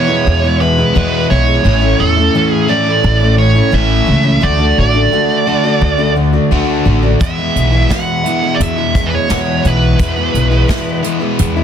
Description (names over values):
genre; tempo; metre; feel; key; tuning
folk rock and heartland rock; 86 BPM; 4/4; straight; E mixolydian; A4 = 440 Hz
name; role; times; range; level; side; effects
nasal lead guitar with a parked wah; melody; 0.0-11.0 s; A4 to F#5; -16 LUFS; right 4 dB; overdrive, analog delay
picked steel-string acoustic guitar; accompaniment; 0.0-11.6 s; E2 to F#4; -18 LUFS; left 5 dB; none
overdriven semi-hollow guitar; riff; 0.0-11.6 s; E2 to F#4; -17 LUFS; right 1 dB; none
upright bass; bass; 0.3-11.6 s; A1 to E2; -14 LUFS; equal; none
soft brush drum kit; drums; 7.2-11.6 s; hi-hat, kick drum, snare drum; -18 LUFS; equal; soft clipping on snare
room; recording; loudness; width
light reverb; dense, heavily limited modern master; -10 LUFS; side -8 dB against mid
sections
0.0-11.6 A section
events
none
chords
0.0 E; 1.6 A; 4.4 D; 7.2 E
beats
0.26 0.95 | 1.65 2.34 3.04 3.73 | 4.42 5.12 5.82 6.51 | 7.21 7.91 8.60 9.30 | 10.00 10.69 11.39